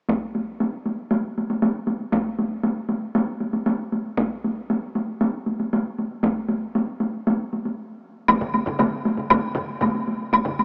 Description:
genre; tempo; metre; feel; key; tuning
japanese traditional, taiko drum ensemble; 117 BPM; 4/4; straight; none; none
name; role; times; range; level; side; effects
solo taiko drums; percussion; 0.1-10.6 s; none; -25 LUFS; equal; none
solo taiko drums; percussion; 0.1-10.4 s; none; -33 LUFS; equal; none
woodblock; percussion; 8.3-10.6 s; none; -24 LUFS; equal; none
taiko ensemble; percussion; 8.4-10.6 s; none; -33 LUFS; equal; none
taiko ensemble; percussion; 8.4-10.6 s; none; -35 LUFS; equal; none
room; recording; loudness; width
moderate huge ambient reverb, RT60 5.9 s; small speaker sound; -24 LUFS; mono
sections
0.1-8.3 A section; 8.3-10.6 B section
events
break 7.8-8.3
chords
none

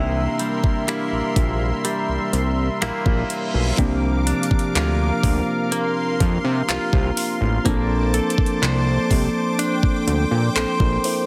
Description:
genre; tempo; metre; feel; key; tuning
contemporary R&B; 62 BPM; 4/4; straight; unclear; A4 = 440 Hz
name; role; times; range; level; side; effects
muted felt-like synth keys; accompaniment; 0.0-11.3 s; E3 to E5; -27 LUFS; equal; chorus
lush unison pad; sustained chords; 0.0-11.3 s; Bb4 to D6; -30 LUFS; equal; chorus, sidechain pumping
direct-recorded clean electric guitar; arpeggios; 0.0-11.3 s; C3 to C5; -29 LUFS; equal; spring reverb, digital delay
fat analog bass; bass; 0.0-11.0 s; A1 to C3; -24 LUFS; equal; none
smooth R&B drum kit; drums; 0.4-11.3 s; finger snaps, handclaps, hi-hat, kick drum; -24 LUFS; equal; none
reverse cymbal; sound effects; 3.1-3.8 s; none; -35 LUFS; equal; none
room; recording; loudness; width
little or no reverb; heavily compressed radio sound, multiband compression; -21 LUFS; mono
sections
0.0-3.8 A section; 3.8-11.3 B section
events
synth keys solo 0.0-3.8; reverse cymbal 3.1-3.8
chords
0.0 C7; 3.8 C9sus4; 7.7 Bbmaj9

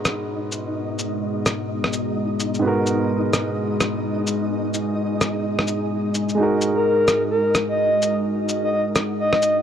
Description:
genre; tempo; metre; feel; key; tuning
future garage; 128 BPM; 4/4; swing 61% on 16ths; G# minor; A4 = 439 Hz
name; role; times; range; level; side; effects
warm upright piano; accompaniment; 0.0-9.6 s; G#2 to A#4; -26 LUFS; right 2 dB; vintage 12-bit sampler grit, analog delay
deep dark ambient pad; sustained chords; 0.0-9.6 s; G#3 to G#5; -25 LUFS; left 1 dB; chorus, built-in reverb, vintage 12-bit sampler grit
flickering grainy texture; texture; 0.0-9.6 s; D#4 to D#5; -31 LUFS; equal; built-in reverb
electronic rim click and cabasa; drums; 0.1-9.5 s; none; -22 LUFS; left 1 dB; small room ambience
breathy flute-like synth lead; melody; 6.8-9.6 s; A#4 to D#5; -19 LUFS; left 1 dB; chorus, tape echo
room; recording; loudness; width
light reverb; dry, gritty hardware recording; -19 LUFS; side -9 dB against mid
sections
0.0-9.6 A section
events
filter sweep on ambient pad 0.0-9.6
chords
0.0 G#m7; 6.4 D#m/G#

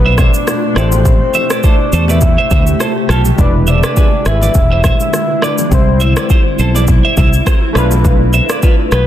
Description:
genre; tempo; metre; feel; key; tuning
afrobeats; 103 BPM; 4/4; swing 55% on 16ths; A minor; A4 = 440 Hz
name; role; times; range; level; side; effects
soft octave-layered synth lead; melody; 0.0-9.1 s; B4 to E5; -19 LUFS; equal; chorus, ping-pong delay
warm analog keys; accompaniment; 0.0-9.1 s; G3 to C5; -21 LUFS; left 1 dB; chorus, tremolo
granular cloud pad; sustained chords; 0.0-9.1 s; B2 to G4; -20 LUFS; equal; built-in reverb
fingered electric bass; bass; 0.0-9.1 s; E1 to E2; -12 LUFS; equal; none
twelve-string electric guitar; riff; 0.1-9.0 s; F4 to E5; -19 LUFS; right 3 dB; spring reverb, ping-pong delay
afro-pop drum kit; drums; 0.2-9.1 s; kick drum, rim click, shaker; -13 LUFS; equal; overdrive
bongos and congas; percussion; 0.2-8.8 s; none; -23 LUFS; left 4 dB; none
room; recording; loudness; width
digital ambience; dense, heavily limited modern master; -9 LUFS; side -12 dB against mid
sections
0.0-9.1 A section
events
none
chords
0.0 Bm7b5; 0.8 Am7; 3.4 E7; 5.7 Cmaj7; 7.8 Bm7b5

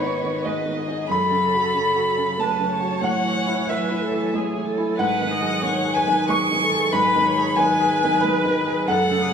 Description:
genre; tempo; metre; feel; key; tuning
neoclassical piano and strings; 93 BPM; 3/4; rubato; unclear; A4 = 439 Hz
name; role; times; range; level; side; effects
rich violin; melody; 0.0-9.3 s; B4 to C#6; -22 LUFS; left 3 dB; none
bright baby grand piano; accompaniment; 0.0-9.3 s; F#2 to C#6; -23 LUFS; right 1 dB; none
rich viola; accompaniment; 0.0-9.3 s; G#4 to D#5; -26 LUFS; right 4 dB; none
rich chamber string section; sustained chords; 0.0-9.3 s; F#3 to G#5; -30 LUFS; equal; none
room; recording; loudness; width
wet recital hall reverb, RT60 1.4 s; small room ambience; -18 LUFS; side -7 dB against mid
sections
0.0-9.3 A section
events
none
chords
0.0 G#m7; 1.1 F#m; 3.1 Amaj7; 5.0 G#m7

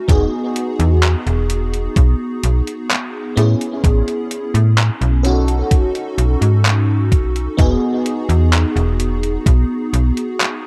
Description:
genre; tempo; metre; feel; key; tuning
vaporwave; 64 BPM; 4/4; straight; E major; A4 = 440 Hz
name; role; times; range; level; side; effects
FM electric piano with soft pad layer; accompaniment; 0.0-10.7 s; B3 to A4; -23 LUFS; equal; phaser, analog chorus, tape echo
slap-like FM bass; bass; 0.1-10.1 s; E1 to A2; -17 LUFS; equal; none
detuned 8-bit digital drum machine; drums; 0.1-10.6 s; handclaps, hi-hat; -24 LUFS; equal; overdrive
electronic kick drum; drums; 0.1-9.7 s; none; -16 LUFS; equal; overdrive
room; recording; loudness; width
light reverb; echo-heavy mix; -16 LUFS; mono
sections
0.0-10.7 A section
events
none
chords
0.1 Emaj7; 3.4 Amaj7; 5.2 B9; 7.6 Emaj7

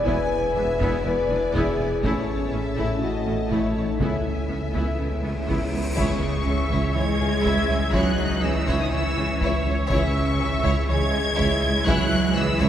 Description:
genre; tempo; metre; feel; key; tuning
cinematic, hybrid orchestral and electronic film score; 122 BPM; 4/4; straight; C# minor; A4 = 440 Hz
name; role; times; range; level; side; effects
clear symphonic violin section; melody; 0.0-12.7 s; G#5 to G#6; -31 LUFS; left 2 dB; none
rich studio violin section; second line; 0.0-12.7 s; C#4 to G#5; -31 LUFS; left 2 dB; none
deep dark ambient pad; sustained chords; 0.0-12.7 s; E3 to C#5; -31 LUFS; equal; chorus, built-in reverb
mellow French horn section; sustained chords; 0.0-12.7 s; E3 to B4; -29 LUFS; left 2 dB; none
sub bass with octave; bass; 0.0-12.7 s; E1 to C#2; -29 LUFS; equal; none
bright symphonic viola section; accompaniment; 0.1-12.7 s; A3 to E5; -31 LUFS; equal; none
mellow tuba; bass; 0.1-12.7 s; E1 to C#2; -31 LUFS; right 2 dB; none
rich symphonic cello section; bass; 0.1-12.7 s; E2 to G#3; -29 LUFS; right 2 dB; none
rich symphonic double bass section; bass; 0.1-12.7 s; E1 to C#2; -31 LUFS; right 2 dB; none
taiko ensemble; drums; 0.1-12.7 s; none; -31 LUFS; equal; none
cymbal swell and impact; sound effects; 5.1-7.9 s; none; -35 LUFS; equal; none
dark trombone section; sustained chords; 6.0-12.0 s; E3 to C#4; -34 LUFS; right 2 dB; none
room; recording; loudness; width
wet church reverb, RT60 3.9 s; recorded in a church or concert hall; -20 LUFS; side -10 dB against mid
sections
0.0-6.0 A section; 6.0-12.7 A section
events
cymbal swell 5.1-6.0; impact 6.0-7.9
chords
0.0 E7; 2.0 A; 4.0 C#m7; 6.0 C#m

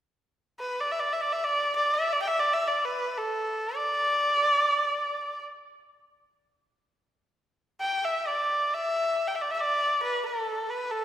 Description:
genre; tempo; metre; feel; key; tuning
chinese traditional; free time; none; none; D zhi mode; A4 = 440 Hz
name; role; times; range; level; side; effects
warm erhu; solo; 0.6-11.0 s; A4 to G5; -25 LUFS; equal; none
room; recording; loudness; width
wet concert hall reverb, RT60 1.8 s; recorded in a church or concert hall; -25 LUFS; side -11 dB against mid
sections
0.0-8.3 A section; 8.3-11.0 B section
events
none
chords
none

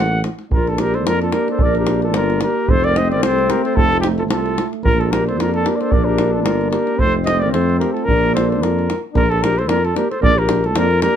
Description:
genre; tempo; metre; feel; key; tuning
balkan folk, Balkan brass band; 111 BPM; 2/4; swing 55% on 16ths; Bb major; A4 = 440 Hz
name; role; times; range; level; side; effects
dark trumpet; melody; 0.0-11.2 s; G4 to F#5; -20 LUFS; left 1 dB; none
clear trombone; accompaniment; 0.0-11.1 s; Bb3 to D4; -24 LUFS; left 7 dB; none
mellow euphonium; accompaniment; 0.0-11.1 s; G3 to Bb3; -24 LUFS; right 10 dB; none
mellow tuba; bass; 0.0-11.1 s; F1 to F2; -20 LUFS; left 1 dB; none
davul; percussion; 0.2-11.2 s; none; -21 LUFS; right 1 dB; none
mellow clarinet; second line; 0.5-11.2 s; Eb4 to C5; -25 LUFS; right 3 dB; none
room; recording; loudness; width
light reverb; none; -15 LUFS; side -9 dB against mid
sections
0.5-9.1 A section; 9.1-11.2 A section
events
none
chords
0.0 Gm; 0.5 Bb; 2.7 F; 4.8 Bb; 7.0 F; 8.1 Bb

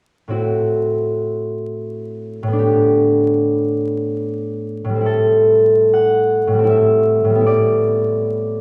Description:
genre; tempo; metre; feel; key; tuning
classical, solo harp piece; 65-84 BPM; 3/4; rubato; A dorian; A4 = 439 Hz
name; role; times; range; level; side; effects
concert harp; solo; 0.3-8.6 s; A2 to F#5; -17 LUFS; equal; none
room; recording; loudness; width
wet recital hall reverb, RT60 1.4 s; heard from further back in the room, vinyl crackle; -16 LUFS; mono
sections
0.4-5.1 A section; 5.1-8.6 B section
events
none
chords
0.4 Am6; 2.6 Gadd9/A; 5.1 Am7; 7.5 Em7/A

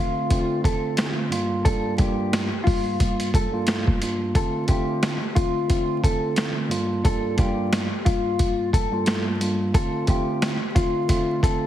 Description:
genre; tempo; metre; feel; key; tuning
hip hop, boom-bap hip-hop; 89 BPM; 4/4; swing 57% on 16ths; D minor; A4 = 440 Hz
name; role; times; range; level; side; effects
mellow electric guitar; melody; 0.0-11.7 s; F4 to A4; -27 LUFS; left 2 dB; lush chorus, high-pass filter, low-pass filter, tape echo
mellow tine electric piano; accompaniment; 0.0-11.7 s; G2 to F4; -25 LUFS; right 1 dB; medium stereo tremolo, cassette tape, high-pass filter, low-pass filter
boom bap sampler-style drum kit; drums; 0.3-11.6 s; hi-hat, kick drum, snare drum; -22 LUFS; equal; none
room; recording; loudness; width
light reverb, digital ambience; heavily compressed radio sound, multiband compression, vinyl crackle; -20 LUFS; side -12 dB against mid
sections
0.0-11.7 A section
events
none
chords
0.0 Dm7; 1.3 Gm7; 4.4 Dm7; 6.7 Gm7; 9.7 Dm7

